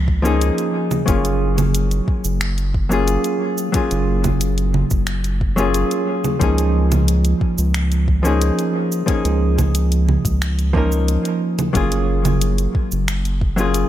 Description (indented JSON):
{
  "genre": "sunset chillout",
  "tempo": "90 BPM",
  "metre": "4/4",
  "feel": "straight",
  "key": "Db major",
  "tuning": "A4 = 440 Hz",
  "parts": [
    { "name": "hollow-body jazz guitar", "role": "accompaniment", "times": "0.0-13.9 s", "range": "F3 to Bb4", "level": "-20 LUFS", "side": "left 1 dB", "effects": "auto-pan, diffuse ambient delay" },
    { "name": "round analog bass", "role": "bass", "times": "0.0-13.8 s", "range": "Gb1 to Db2", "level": "-18 LUFS", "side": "equal", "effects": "none" },
    { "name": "electronic kick drum", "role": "drums", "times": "0.1-13.5 s", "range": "none", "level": "-20 LUFS", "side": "equal", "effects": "none" },
    { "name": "smooth R&B drum kit", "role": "drums", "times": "0.3-13.9 s", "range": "cabasa, congas, finger snaps, hi-hat", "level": "-25 LUFS", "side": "right 4 dB", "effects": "none" }
  ],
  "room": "light reverb",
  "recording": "none",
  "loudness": "-16 LUFS",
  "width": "side -12 dB against mid",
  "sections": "0.0-13.9 A section",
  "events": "none",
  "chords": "0.0 Db6; 1.1 Gbmaj7; 6.4 Db6; 11.7 Gbmaj7"
}